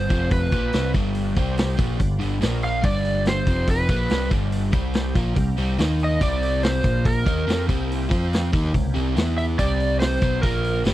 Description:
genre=blues rock power trio and southern rock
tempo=142 BPM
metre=4/4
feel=straight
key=unclear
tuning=A4 = 439 Hz
part: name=overdriven slide guitar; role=melody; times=0.0-10.8 s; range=Bb4 to F5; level=-26 LUFS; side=right 1 dB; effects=none
part: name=overdriven tonewheel organ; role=sustained chords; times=0.0-10.9 s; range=E3 to F5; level=-38 LUFS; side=right 4 dB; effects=none
part: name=crunchy overdriven guitar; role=riff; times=0.0-10.9 s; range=F2 to F4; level=-25 LUFS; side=left 1 dB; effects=none
part: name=growling picked electric bass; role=bass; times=0.0-10.9 s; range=F1 to F2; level=-24 LUFS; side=equal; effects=overdrive
part: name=vintage drum kit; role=drums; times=0.1-10.9 s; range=hi-hat, kick drum, snare drum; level=-24 LUFS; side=equal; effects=none
room=little or no reverb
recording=dry, close 1970s-style studio recording, lossy compression artefacts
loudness=-19 LUFS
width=side -14 dB against mid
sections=0.0-10.9 A section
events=none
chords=0.1 F5; 0.5 G7; 1.4 C5; 1.8 G7; 2.4 Bb5; 2.8 G7; 3.5 F5; 3.9 G7; 4.7 C5; 5.2 Bb5; 5.4 C7; 5.8 Eb5; 6.2 C7; 6.8 Bb5; 7.3 C7; 8.1 F5; 8.5 Eb5; 8.7 C#dim7; 9.2 E5; 9.6 C5; 10.2 B5; 10.4 Bb5

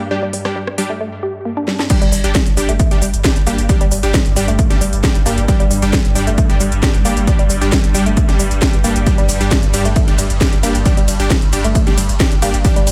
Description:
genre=driving peak-time techno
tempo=134 BPM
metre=4/4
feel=straight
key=unclear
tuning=A4 = 439 Hz
part: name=swarming drone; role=drone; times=0.0-12.9 s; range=G2 to G3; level=-27 LUFS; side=equal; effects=built-in reverb, phaser, sidechain pumping
part: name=woody wave-folded pluck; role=riff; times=0.1-12.9 s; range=G3 to G4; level=-24 LUFS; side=equal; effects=chorus, overdrive, sidechain pumping, dub echo
part: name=supersaw stab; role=stabs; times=0.1-12.8 s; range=G3 to G4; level=-25 LUFS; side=equal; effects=sidechain pumping, dub echo
part: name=techno drum kit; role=drums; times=0.3-12.9 s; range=crash cymbal, hi-hat, ride cymbal, rim click, shaker, snare drum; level=-23 LUFS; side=equal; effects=overdrive, sidechain pumping on hats, studio reverb, sidechain pumping on cymbals, sidechain pumping on perc
part: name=electronic kick drum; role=drums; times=1.9-12.7 s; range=none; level=-17 LUFS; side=equal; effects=overdrive, studio reverb
part: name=saturated sub bass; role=bass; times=2.0-12.9 s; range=G1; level=-22 LUFS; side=equal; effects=overdrive, sidechain pumping, low-pass filter
room=digital ambience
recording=none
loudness=-15 LUFS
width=mono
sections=0.0-1.9 A section; 1.9-12.9 B section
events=drum fill 1.7; drop 1.9-12.9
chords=0.0 G5

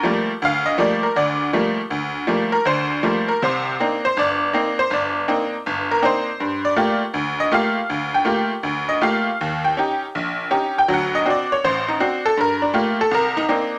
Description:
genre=solo jazz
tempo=161 BPM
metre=4/4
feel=swing 66% on 8ths, rubato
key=G minor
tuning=A4 = 440 Hz
part: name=tack piano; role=solo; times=0.0-13.8 s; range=G1 to G5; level=-20 LUFS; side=equal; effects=none
room=moderate large studio reverb, RT60 0.9 s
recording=none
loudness=-20 LUFS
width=mono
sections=0.0-13.8 A section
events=honky-tonk piano solo 0.0-13.8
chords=0.0 Gm9; 3.4 Cm9; 6.4 Gm9; 9.4 Eb7; 10.9 D7; 12.4 Gm9; 13.1 Cm9

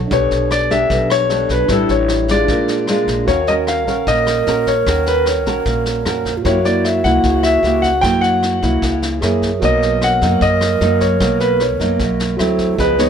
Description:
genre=bossa nova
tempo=151 BPM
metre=4/4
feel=straight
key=Eb minor from 3.3 s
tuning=A4 = 438 Hz
part: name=nylon-string guitar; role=accompaniment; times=0.0-13.1 s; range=F#2 to Bb4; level=-19 LUFS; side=equal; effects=none
part: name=tine electric piano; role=accompaniment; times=0.0-13.1 s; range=D4 to F5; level=-25 LUFS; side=right 5 dB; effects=medium stereo tremolo
part: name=upright bass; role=bass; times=0.0-13.1 s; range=A1 to Gb2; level=-22 LUFS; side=equal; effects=none
part: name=warm concert grand piano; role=melody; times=0.1-13.1 s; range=A4 to G5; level=-17 LUFS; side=left 3 dB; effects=plate reverb
part: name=vintage brush drum kit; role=drums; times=0.1-13.0 s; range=kick drum, rim click, snare drum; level=-24 LUFS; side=left 1 dB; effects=none
part: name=breathy mellow alto flute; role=second line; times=3.3-13.1 s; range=F4 to A#4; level=-21 LUFS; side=right 8 dB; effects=none
room=light reverb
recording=none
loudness=-13 LUFS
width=side -8 dB against mid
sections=0.0-3.3 A section; 3.3-13.1 B section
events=none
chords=0.1 Em7/B; 1.7 A7sus4; 2.5 A#7; 3.3 Ebm7; 6.5 Gb7b9; 9.2 Gb9; 9.6 Bmaj7; 12.4 D9

